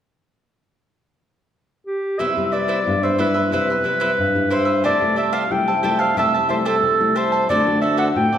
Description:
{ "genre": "samba", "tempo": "91 BPM", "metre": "4/4", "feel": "straight", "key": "C major", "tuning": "A4 = 440 Hz", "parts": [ { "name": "warm clarinet", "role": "melody", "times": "1.9-8.4 s", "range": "G4 to G5", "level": "-19 LUFS", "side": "equal", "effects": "none" }, { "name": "cavaquinho", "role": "accompaniment", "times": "2.2-8.4 s", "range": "E4 to A5", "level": "-24 LUFS", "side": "right 2 dB", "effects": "none" }, { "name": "nylon-string guitar", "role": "accompaniment", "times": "2.2-8.4 s", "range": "G2 to F#4", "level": "-22 LUFS", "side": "left 2 dB", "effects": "none" } ], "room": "wet recital hall reverb, RT60 1.4 s", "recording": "recorded in a church or concert hall", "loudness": "-16 LUFS", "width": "side -9 dB against mid", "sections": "0.0-2.2 A section; 2.2-8.4 B section", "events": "none", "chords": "0.0 N.C.; 2.2 Cmaj7; 4.8 Am7/C; 7.5 D7", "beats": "0.22 0.88 1.54 | 2.20 2.86 3.52 4.19 | 4.85 5.51 6.17 6.83 | 7.49 8.15" }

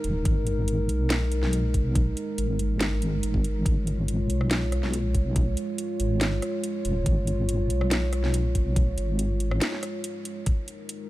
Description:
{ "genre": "deep dubstep", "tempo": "141 BPM", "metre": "4/4", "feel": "half-time", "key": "G# dorian", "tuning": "A4 = 439 Hz", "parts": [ { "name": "dark analog pad", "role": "sustained chords", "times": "0.0-11.1 s", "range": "G#3 to C#5", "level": "-30 LUFS", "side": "equal", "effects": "chorus" }, { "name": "deep soft wobble bass", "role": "bass", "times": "0.0-9.6 s", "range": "D#1 to B1", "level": "-25 LUFS", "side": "equal", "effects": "chorus" }, { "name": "garage drum kit", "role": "drums", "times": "0.0-11.0 s", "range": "hi-hat, rim click, snare drum", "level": "-31 LUFS", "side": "equal", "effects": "high-pass filter on snare, studio reverb, high-pass filter on hats" }, { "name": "electronic kick drum", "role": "drums", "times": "0.3-10.6 s", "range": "none", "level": "-24 LUFS", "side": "equal", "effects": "studio reverb" } ], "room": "little or no reverb", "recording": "none", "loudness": "-23 LUFS", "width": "side -16 dB against mid", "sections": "0.0-10.5 A section", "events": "break 9.6-10.5", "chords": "0.0 G#m; 10.5 G#5", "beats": "| 0.25 0.68 1.10 1.53 | 1.96 2.38 2.81 3.23 | 3.66 4.08 4.51 4.93 | 5.36 5.79 6.21 6.64 | 7.06 7.49 7.91 8.34 | 8.76 9.19 9.62 10.04 | 10.47 10.89" }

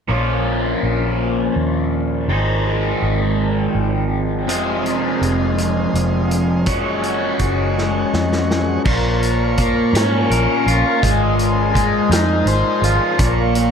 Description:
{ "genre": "psychedelic rock", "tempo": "55 BPM (dotted quarters)", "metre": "6/8", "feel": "straight", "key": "Bb minor", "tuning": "A4 = 440 Hz", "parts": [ { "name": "raw garage guitar", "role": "riff", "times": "0.1-13.7 s", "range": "F2 to C5", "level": "-18 LUFS", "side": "left 1 dB", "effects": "overdrive, phaser" }, { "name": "vintage muted fingered electric bass", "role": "bass", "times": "0.1-13.7 s", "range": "F1 to Ab2", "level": "-20 LUFS", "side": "equal", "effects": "none" }, { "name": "hand-pumped harmonium", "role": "drone", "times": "0.1-13.7 s", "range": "Bb2 to F3", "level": "-28 LUFS", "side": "right 1 dB", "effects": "stereo widening" }, { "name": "combo organ", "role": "sustained chords", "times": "4.5-13.7 s", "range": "Ab4 to Db6", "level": "-28 LUFS", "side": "right 3 dB", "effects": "none" }, { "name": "vintage drum kit", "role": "drums", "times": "4.5-13.7 s", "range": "crash cymbal, hi-hat, kick drum, snare drum", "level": "-22 LUFS", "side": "equal", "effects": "none" } ], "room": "light reverb, studio reverb", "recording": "none", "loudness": "-15 LUFS", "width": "side -7 dB against mid", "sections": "0.1-8.9 A section; 8.9-13.7 B section", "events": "drum fill 7.8-8.9", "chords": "0.1 Bbm; 2.3 Ab; 4.5 Fm7; 6.7 Gbsus2; 8.9 Bbm; 11.0 Ab6; 13.2 Bbm", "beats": "| 0.11 1.21 | 2.30 3.40 | 4.49 5.58 | 6.67 7.76 | 8.85 9.94 | 11.02 12.10 | 13.18" }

